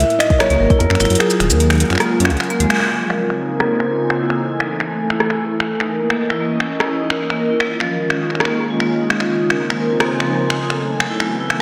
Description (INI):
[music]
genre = IDM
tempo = 150 BPM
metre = 4/4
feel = straight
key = unclear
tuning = A4 = 440 Hz
[part]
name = felt-muted upright piano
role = melody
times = 0.0-2.4 s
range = Ab4 to Fb5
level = -21 LUFS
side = equal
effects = vintage 12-bit sampler grit, delay, slapback echo
[part]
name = glassy FM pad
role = sustained chords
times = 0.1-11.6 s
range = Db3 to Ab5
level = -25 LUFS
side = equal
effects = ensemble chorus, built-in reverb
[part]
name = vibraphone with medium hard mallets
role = arpeggios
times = 0.0-11.6 s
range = F3 to Bb4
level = -22 LUFS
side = equal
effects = low-pass filter, delay, slapback echo
[part]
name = dark detuned saw bass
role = bass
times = 0.0-2.7 s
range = Eb1 to Gb2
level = -18 LUFS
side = equal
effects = tube saturation
[part]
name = booming analog drum machine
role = drums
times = 0.0-11.6 s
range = finger snaps, hi-hat, rim click, shaker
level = -23 LUFS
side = equal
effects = low-pass filter on snare, low-pass filter on hats, low-pass filter on perc, slapback echo
[part]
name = electronic kick drum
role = drums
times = 0.3-0.8 s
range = none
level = -18 LUFS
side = equal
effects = none
[sound]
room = wet lush hall reverb, RT60 1.9 s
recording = big arena sound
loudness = -17 LUFS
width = mono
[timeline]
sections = 0.0-2.8 A section; 2.8-11.6 B section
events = kick drops out 1.2-2.8; band accent 2.7; filter sweep on vibraphone 2.8-11.6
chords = 0.0 Dbm; 1.2 Ebm11; 2.8 Bbm11; 4.2 Eadd11; 5.8 Dbmadd9; 7.6 Eb9sus4; 9.2 Bbm11; 10.6 Gbm11